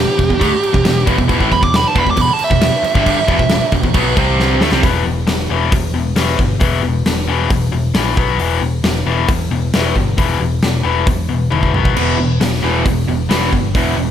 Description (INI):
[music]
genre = hard rock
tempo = 135 BPM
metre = 4/4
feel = straight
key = E minor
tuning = A4 = 440 Hz
[part]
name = dark smooth lead guitar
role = melody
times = 0.0-3.7 s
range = G4 to D6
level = -17 LUFS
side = right 3 dB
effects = overdrive, tape echo
[part]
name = crunchy overdriven guitar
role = riff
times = 0.0-4.8, 12.0-14.1 s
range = E2 to C4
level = -20 LUFS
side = right 11 dB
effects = none
[part]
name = overdriven electric guitar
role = riff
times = 0.0-14.1 s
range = E2 to C4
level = -18 LUFS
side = left 7 dB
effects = none
[part]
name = picked electric bass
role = bass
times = 0.0-14.1 s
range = E1 to D2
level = -19 LUFS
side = equal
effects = none
[part]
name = big rock drum kit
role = drums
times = 0.2-13.9 s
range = crash cymbal, hi-hat, kick drum, snare drum, toms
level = -17 LUFS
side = equal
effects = none
[sound]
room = light reverb, small room ambience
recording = none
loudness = -12 LUFS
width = side -10 dB against mid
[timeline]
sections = 0.0-4.8 A section; 4.8-14.1 B section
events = lead electric guitar solo 0.0-4.8; drum fill 4.4-4.8, 11.5-12.0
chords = 0.0 Em; 4.2 C5; 4.6 Gsus24; 4.8 E5; 8.2 B5; 8.4 E5; 11.7 B5; 12.0 E5